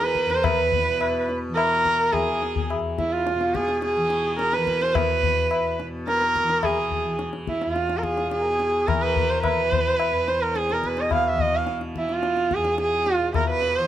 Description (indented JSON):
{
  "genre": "indian classical, Hindustani",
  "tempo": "107 BPM",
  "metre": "4/4",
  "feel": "straight",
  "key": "unclear",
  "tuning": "A4 = 440 Hz",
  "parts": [
    { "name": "rich sarangi", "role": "melody", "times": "0.0-13.9 s", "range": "E4 to F5", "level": "-22 LUFS", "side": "right 2 dB", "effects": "none" },
    { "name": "pedal harmonium", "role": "second line", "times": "0.0-11.8 s", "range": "E4 to F5", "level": "-31 LUFS", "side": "left 3 dB", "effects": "none" },
    { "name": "tanpura", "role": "drone", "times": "0.0-13.9 s", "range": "E2 to E3", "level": "-31 LUFS", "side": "left 1 dB", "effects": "none" },
    { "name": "tabla", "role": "percussion", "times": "0.0-13.8 s", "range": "none", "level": "-27 LUFS", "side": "left 6 dB", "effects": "none" }
  ],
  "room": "little or no reverb",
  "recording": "close, detailed microphones",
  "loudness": "-20 LUFS",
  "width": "side -11 dB against mid",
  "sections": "0.0-13.9 A section",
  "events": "none",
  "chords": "none"
}